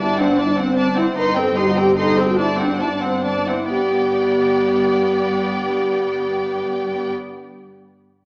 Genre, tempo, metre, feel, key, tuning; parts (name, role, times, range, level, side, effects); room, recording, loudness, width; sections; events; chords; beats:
quick classical-period movement for symphony orchestra; 86-102 BPM (dotted quarters); 6/8; rubato; G major; A4 = 435 Hz
clear chamber violin section; melody; 0.0-7.1 s; F#5 to C6; -30 LUFS; equal
rich chamber violin section; second line; 0.0-7.1 s; C5 to Eb5; -29 LUFS; equal
rich studio viola section; accompaniment; 0.0-7.1 s; B3 to Eb4; -27 LUFS; equal
dark French horn section; sustained chords; 0.0-7.1 s; C4 to B4; -22 LUFS; equal
rich chamber double bass section; bass; 0.0-7.1 s; G1; -32 LUFS; equal
rich symphonic cello section; bass; 0.0-7.1 s; G2; -30 LUFS; equal
wet recital hall reverb, RT60 1.7 s; small speaker sound; -19 LUFS; mono
0.0-3.7 A section; 3.7-6.4 B section
slowing down 0.6-3.7
0.0 D7/G; 1.2 Cm/G; 2.4 D7/G; 3.7 G
0.58 | 1.17 1.77 | 2.38 3.02 | 3.70 4.37 | 5.04 5.70